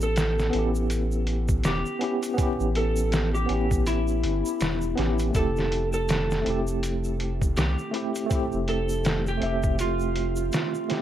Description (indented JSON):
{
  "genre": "trip hop",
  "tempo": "81 BPM",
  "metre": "4/4",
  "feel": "swing 59% on 16ths",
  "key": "unclear",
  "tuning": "A4 = 440 Hz",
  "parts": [
    { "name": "electric slide guitar", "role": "melody", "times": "0.0-11.0 s", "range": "E4 to A4", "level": "-30 LUFS", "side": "right 1 dB", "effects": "dub echo" },
    { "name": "tine electric piano", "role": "accompaniment", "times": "0.0-11.0 s", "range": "A3 to E5", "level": "-29 LUFS", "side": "equal", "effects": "medium stereo tremolo, tape echo" },
    { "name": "round analog bass", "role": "bass", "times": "0.0-10.5 s", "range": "E1 to C2", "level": "-27 LUFS", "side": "equal", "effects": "none" },
    { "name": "egg shaker", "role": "percussion", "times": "0.0-10.9 s", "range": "none", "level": "-42 LUFS", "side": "right 2 dB", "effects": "none" },
    { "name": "trip hop sampler-style drum kit", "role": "drums", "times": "0.2-11.0 s", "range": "hi-hat, kick drum, snare drum", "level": "-28 LUFS", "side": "equal", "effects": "vintage 12-bit sampler grit" }
  ],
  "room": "digital ambience",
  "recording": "vinyl crackle",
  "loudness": "-23 LUFS",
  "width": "side -11 dB against mid",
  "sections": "0.0-11.0 A section",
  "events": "none",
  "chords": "0.0 A7; 5.3 Fmaj7"
}